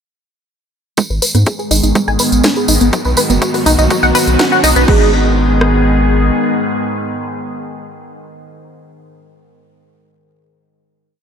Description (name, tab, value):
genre	melodic techno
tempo	123 BPM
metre	4/4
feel	straight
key	G# minor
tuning	A4 = 440 Hz
part	evolving wavetable pad	sustained chords	1.6-8.1 s	D#3 to G#4	-17 LUFS	equal	chorus, built-in reverb, sidechain pumping
part	tight sequenced synth	arpeggios	1.0-5.1 s	F#3 to G#5	-15 LUFS	equal	chorus, phaser, sidechain pumping, ping-pong delay
part	overtone-sweeping drone	drone	1.6-8.1 s	G#2 to D#3	-25 LUFS	left 2 dB	chorus, built-in reverb, sidechain pumping
part	techno drum kit	drums	1.0-5.7 s	kick drum, rim click	-14 LUFS	equal	overdrive, high-pass filter on kick, high-pass filter on snare
part	techno drum kit	drums	1.0-5.0 s	crash cymbal, hi-hat, rim click, snare drum	-19 LUFS	equal	overdrive, sidechain pumping on hats, sidechain pumping on cymbals
part	tambourine	percussion	1.0-4.9 s	none	-20 LUFS	right 2 dB	none
part	riser	sound effects	3.0-4.9 s	none	-23 LUFS	right 3 dB	none
part	round analog bass	bass	1.1-6.3 s	F#1 to G#2	-14 LUFS	equal	sidechain pumping
room	light reverb, digital ambience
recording	none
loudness	-10 LUFS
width	side -7 dB against mid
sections	1.0-4.9 build; 4.9-8.8 final chord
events	build-up 1.0-4.9; filter sweep on synth arpeggio sound 1.0-4.9; filter sweep on ambient pad 1.0-4.9; riser 3.0-4.9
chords	1.0 G#m; 2.9 B; 4.9 G#m